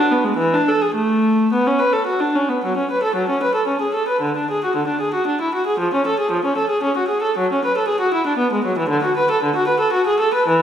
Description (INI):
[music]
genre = classical, baroque-style suite movement for unaccompanied viola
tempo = 104-120 BPM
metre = 3/4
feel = rubato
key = F# minor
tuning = A4 = 440 Hz
[part]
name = warm viola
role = solo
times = 0.0-10.6 s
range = D3 to B4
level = -16 LUFS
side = equal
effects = none
[sound]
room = wet recital hall reverb, RT60 1.4 s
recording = recorded in a church or concert hall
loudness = -16 LUFS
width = side -9 dB against mid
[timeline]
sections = 0.0-2.6 A section; 2.6-10.6 A section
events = none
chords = none